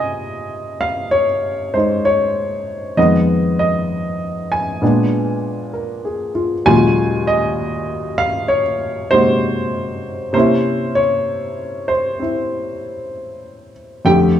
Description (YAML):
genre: solo jazz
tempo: 65 BPM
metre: 4/4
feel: swing 67% on 8ths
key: unclear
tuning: A4 = 440 Hz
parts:
  - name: dark baby grand piano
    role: solo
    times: 0.0-14.4 s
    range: Eb2 to Ab5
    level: -15 LUFS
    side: equal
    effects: none
room: wet studio reverb, RT60 0.9 s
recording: heard from further back in the room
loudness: -15 LUFS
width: side -10 dB against mid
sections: 0.0-14.4 A section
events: none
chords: 0.0 Dbmaj9; 3.0 Fm7b5; 4.8 Bb7b9; 6.7 Ebm11; 10.4 C7b9